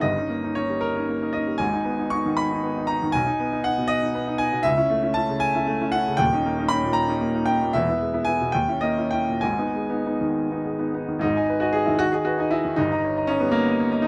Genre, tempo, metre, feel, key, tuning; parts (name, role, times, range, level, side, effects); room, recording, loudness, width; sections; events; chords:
classical, romantic character piece for solo piano; 64-81 BPM (dotted quarters); 6/8; rubato; G# minor; A4 = 440 Hz
clear grand piano; solo; 0.0-14.1 s; D#1 to C#6; -23 LUFS; equal
little or no reverb; close, detailed microphones; -23 LUFS; mono
0.0-11.2 A section; 11.2-14.1 A section
0.0 D#7/G; 1.6 G#m; 3.1 G#m/B; 4.7 A/C#; 6.2 D#7; 7.7 E; 8.5 D#5; 9.4 G#m; 12.8 D#7/G